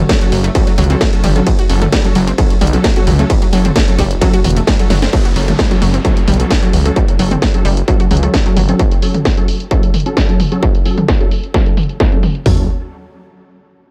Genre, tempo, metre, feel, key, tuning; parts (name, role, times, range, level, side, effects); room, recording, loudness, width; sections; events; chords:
driving peak-time techno; 131 BPM; 4/4; straight; F# minor; A4 = 441 Hz
rave stab; stabs; 0.0-12.6 s; F#3 to A4; -22 LUFS; equal; chorus, built-in reverb, vintage 12-bit sampler grit, sidechain pumping, digital delay
detuned saw bass; bass; 0.0-8.7, 12.5-12.7 s; E1 to C#2; -17 LUFS; equal; sidechain pumping
analog drone; drone; 0.0-5.2 s; F#3; -32 LUFS; equal
analog pluck; riff; 0.1-8.7, 12.5-12.7 s; F#3 to F#4; -23 LUFS; equal; chorus, sidechain pumping, dub echo
techno drum kit; drums; 0.1-12.6 s; hi-hat, kick drum, toms; -16 LUFS; equal; distortion
techno drum kit; drums; 0.1-12.4 s; hi-hat, ride cymbal, snare drum, toms; -21 LUFS; equal; sidechain pumping on hats, low-pass filter on hats, sidechain pumping on toms, low-pass filter on toms, low-pass filter on snare, sidechain pumping on cymbals, low-pass filter on cymbals, low-pass filter on room
downlifter; sound effects; 5.1-8.8 s; -30 LUFS; equal
little or no reverb; -13 LUFS; mono
0.0-5.1 A section; 5.1-12.5 B section; 12.5-13.9 C section
drop 0.0-5.1; band accent 4.7; drum fill 4.9; filter sweep on drum 5.1-12.5; filter sweep on synth stab 5.1-12.5
0.0 F#m